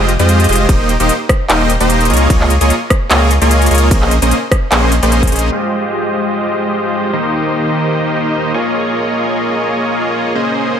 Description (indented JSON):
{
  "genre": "future bass",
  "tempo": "149 BPM",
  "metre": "4/4",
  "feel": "swing 54% on 16ths, half-time",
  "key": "F minor",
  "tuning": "A4 = 440 Hz",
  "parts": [
    { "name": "dense compressed supersaw", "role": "riff", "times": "0.0-10.8 s", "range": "Eb3 to Eb5", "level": "-13 LUFS", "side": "equal", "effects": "sidechain pumping, low-pass filter, dub echo" },
    { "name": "saturated sub bass", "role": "bass", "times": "0.0-5.5 s", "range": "Eb1 to F2", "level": "-13 LUFS", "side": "equal", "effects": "tube saturation, sidechain pumping" },
    { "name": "big-room dance drum kit", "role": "drums", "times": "0.1-5.6 s", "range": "crash cymbal, handclaps, hi-hat, ride cymbal, rim click", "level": "-17 LUFS", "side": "equal", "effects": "overdrive, low-pass filter on snare, low-pass filter on hats, low-pass filter on cymbals" },
    { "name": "electronic kick drum", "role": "drums", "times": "0.7-5.3 s", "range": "none", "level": "-13 LUFS", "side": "equal", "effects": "none" }
  ],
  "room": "light reverb",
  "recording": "none",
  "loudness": "-11 LUFS",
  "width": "side -8 dB against mid",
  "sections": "0.0-5.5 A section; 5.5-10.8 B section",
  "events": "drop 0.0-5.5; filter sweep on supersaw synth 5.5-10.8",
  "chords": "0.0 Fm9; 0.7 Cm7/Eb; 2.1 Db69; 3.9 Bbm11; 5.5 Fm9; 7.1 Cm7/Eb; 8.5 Db69"
}